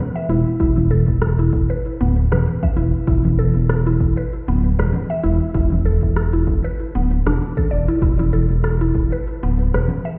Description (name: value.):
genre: organic downtempo.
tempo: 97 BPM.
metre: 4/4.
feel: swing 56% on 16ths.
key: unclear.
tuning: A4 = 438 Hz.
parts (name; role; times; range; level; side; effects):
mallet-like synth pluck; arpeggios; 0.2-10.2 s; B3 to E5; -26 LUFS; equal; analog chorus, vintage 12-bit sampler grit, digital delay, shimmer reverb.
electronic shaker, congas and rim click; drums; 0.2-10.2 s; none; -26 LUFS; equal; none.
smooth synth bass; bass; 0.3-9.9 s; D1 to E1; -20 LUFS; equal; sidechain pumping.
electronic kick drum; drums; 0.6-9.1 s; none; -24 LUFS; equal; none.
room: light reverb, digital ambience.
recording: heard muffled through a wall, stone room reverb, EQ.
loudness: -18 LUFS.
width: mono.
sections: 0.0-10.2 A section.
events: none.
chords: 0.0 E5.